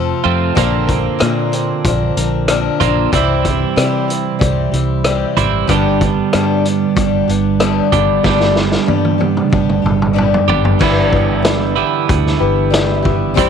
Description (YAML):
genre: folk rock and heartland rock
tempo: 94 BPM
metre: 4/4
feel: straight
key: unclear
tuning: A4 = 440 Hz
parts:
  - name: picked swing-style acoustic guitar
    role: accompaniment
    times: 0.0-13.5 s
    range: G2 to Bb4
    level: -19 LUFS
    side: left 10 dB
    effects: none
  - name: twelve-string electric guitar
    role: riff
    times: 0.0-13.5 s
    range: F2 to G4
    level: -17 LUFS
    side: right 11 dB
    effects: none
  - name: fingered electric bass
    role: bass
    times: 0.0-13.5 s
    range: G1 to C3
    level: -19 LUFS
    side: left 1 dB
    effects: none
  - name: vintage drum kit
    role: drums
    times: 0.6-13.5 s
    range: crash cymbal, hi-hat, kick drum, rim click, snare drum, toms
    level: -18 LUFS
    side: left 1 dB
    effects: none
  - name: overdriven reed electric piano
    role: accompaniment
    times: 10.8-13.5 s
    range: E4 to C5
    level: -21 LUFS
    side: left 14 dB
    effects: none
room: light reverb, studio reverb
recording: 1960s-style stereo with parts hard left and right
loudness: -12 LUFS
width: side -7 dB against mid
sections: 0.0-10.8 A section; 10.8-13.5 B section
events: drum fill 8.2-10.8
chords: 0.0 F; 0.6 Bbadd9; 3.1 C; 5.7 G; 10.8 G6